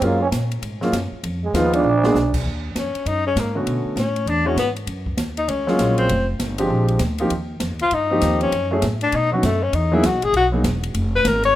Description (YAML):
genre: jazz, small-group swing and bop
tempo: 198 BPM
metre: 4/4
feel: swing 62% on 8ths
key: unclear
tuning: A4 = 440 Hz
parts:
  - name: growling trombone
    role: second line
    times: 0.0-2.4 s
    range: Ab3 to D4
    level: -21 LUFS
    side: right 4 dB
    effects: none
  - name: warm grand piano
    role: accompaniment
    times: 0.0-10.6 s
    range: D3 to G#4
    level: -22 LUFS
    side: equal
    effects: none
  - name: upright bass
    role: bass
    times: 0.0-11.5 s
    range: E1 to B2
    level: -23 LUFS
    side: equal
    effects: none
  - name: open jazz drum kit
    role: drums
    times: 0.0-11.5 s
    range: crash cymbal, hi-hat, kick drum, ride cymbal, snare drum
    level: -28 LUFS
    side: equal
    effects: none
  - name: breathy tenor saxophone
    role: melody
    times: 2.8-11.6 s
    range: F#3 to Db5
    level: -20 LUFS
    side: left 3 dB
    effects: none
room: light reverb, studio reverb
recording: rough home demo mix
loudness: -18 LUFS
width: side -13 dB against mid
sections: 0.0-2.5 A section; 2.5-11.6 A section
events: trombone solo 0.0-2.5; drum fill 1.8-2.2; tenor saxophone solo 2.5-11.6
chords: 0.0 F#maj9; 1.2 Fm7b5; 1.8 A#7b9; 2.5 Ebm11; 3.7 Bm7; 4.3 E9; 4.9 Gbmaj9; 6.1 Fmadd9; 6.7 Bb13; 7.3 Eb6; 8.5 Gbm7; 9.1 Badd9; 9.7 Emaj9#11; 10.9 Fdim